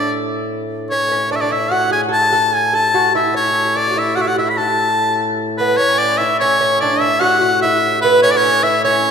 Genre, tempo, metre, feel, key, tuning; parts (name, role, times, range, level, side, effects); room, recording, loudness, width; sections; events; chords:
medieval dance; 98 BPM (dotted quarters); 6/8; straight; A major; A4 = 439 Hz
edgy shawm; melody; 0.0-9.1 s; B4 to B5; -14 LUFS; left 1 dB
lute; second line; 0.0-9.1 s; B3 to A4; -19 LUFS; right 2 dB
pedal harmonium; drone; 0.0-9.1 s; A2; -26 LUFS; left 3 dB
wet church reverb, RT60 2.8 s; minimal, uncompressed stereo recording; -13 LUFS; side -6 dB against mid
0.0-5.8 A section; 5.8-9.1 B section